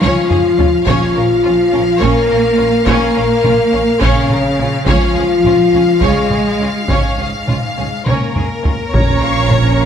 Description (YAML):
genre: cinematic, epic orchestral film score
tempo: 209 BPM (eighths)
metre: 7/8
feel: straight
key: Bb minor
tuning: A4 = 440 Hz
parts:
  - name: rich symphonic violin section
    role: melody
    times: 0.0-9.9 s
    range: Bb4 to F5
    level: -22 LUFS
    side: left 4 dB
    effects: none
  - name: warm symphonic violin section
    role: second line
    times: 0.0-9.9 s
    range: F4 to Db6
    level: -23 LUFS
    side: left 1 dB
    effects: none
  - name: warm symphonic viola section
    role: accompaniment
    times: 0.0-9.9 s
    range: Db4 to Db5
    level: -22 LUFS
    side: right 1 dB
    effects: none
  - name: dark French horn section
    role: sustained chords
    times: 0.0-9.9 s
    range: Ab3 to Bb4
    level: -15 LUFS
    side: left 3 dB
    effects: none
  - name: rich studio cello section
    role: bass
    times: 0.0-9.9 s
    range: Ab2 to Bb3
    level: -19 LUFS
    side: right 3 dB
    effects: none
  - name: warm symphonic double bass section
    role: bass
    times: 0.0-9.9 s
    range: Bb1 to Db2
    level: -21 LUFS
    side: right 4 dB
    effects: none
  - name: taiko ensemble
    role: drums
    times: 0.0-9.8 s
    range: none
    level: -18 LUFS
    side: equal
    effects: none
  - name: timpani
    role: percussion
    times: 0.9-1.7, 8.9-9.8 s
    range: Bb2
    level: -22 LUFS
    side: right 1 dB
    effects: none
  - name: clear trombone section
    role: sustained chords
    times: 8.9-9.9 s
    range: F3 to Db4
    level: -24 LUFS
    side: right 6 dB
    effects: none
  - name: sub drop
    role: sound effects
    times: 9.2-9.9 s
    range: none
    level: -25 LUFS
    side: equal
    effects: none
room: moderate scoring stage reverb, RT60 1.6 s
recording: none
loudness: -11 LUFS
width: side -8 dB against mid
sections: 0.0-8.9 A section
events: drum fill 0.0-0.9, 8.1-8.9; impact 8.9-9.9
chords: 0.0 Db; 0.9 Bbm; 4.9 Db; 8.9 Bbm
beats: 0.03 0.31 0.59 | 0.87 1.16 1.44 1.73 2.01 2.30 2.59 | 2.87 3.16 3.44 3.73 4.01 4.30 4.59 | 4.87 5.16 5.44 5.73 6.02 6.31 6.60 | 6.89 7.19 7.48 7.77 8.06 8.36 8.65 | 8.94 9.22 9.51 9.80